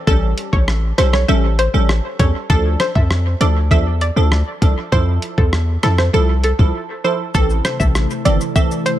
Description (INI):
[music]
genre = dancehall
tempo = 99 BPM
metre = 4/4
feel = straight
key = A minor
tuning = A4 = 440 Hz
[part]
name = analog pluck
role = melody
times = 0.1-9.0 s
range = A4 to E5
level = -22 LUFS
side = equal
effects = chorus, dub echo
[part]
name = wavetable chord stab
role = accompaniment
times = 0.1-8.7 s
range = E3 to A4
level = -22 LUFS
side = right 3 dB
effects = dub echo
[part]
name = hard-hitting 808-style bass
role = bass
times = 0.1-8.4 s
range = G1 to F2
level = -16 LUFS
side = equal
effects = none
[part]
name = dusty soul sampler-style drum kit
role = drums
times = 0.1-9.0 s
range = hi-hat, kick drum, rim click, shaker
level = -18 LUFS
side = equal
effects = none
[part]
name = glassy FM pad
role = sustained chords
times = 7.6-9.0 s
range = C3 to A4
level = -23 LUFS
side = equal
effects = ensemble chorus, built-in reverb, sidechain pumping
[sound]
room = little or no reverb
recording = echo-heavy mix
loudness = -14 LUFS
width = side -13 dB against mid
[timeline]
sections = 0.0-7.3 A section; 7.3-9.0 B section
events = break 6.7-7.3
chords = 0.1 A7; 2.5 Dm; 4.9 Fmaj7; 7.3 Am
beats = | 0.07 0.68 1.28 1.89 | 2.50 3.10 3.71 4.32 | 4.92 5.53 6.13 6.74 | 7.35 7.95 8.56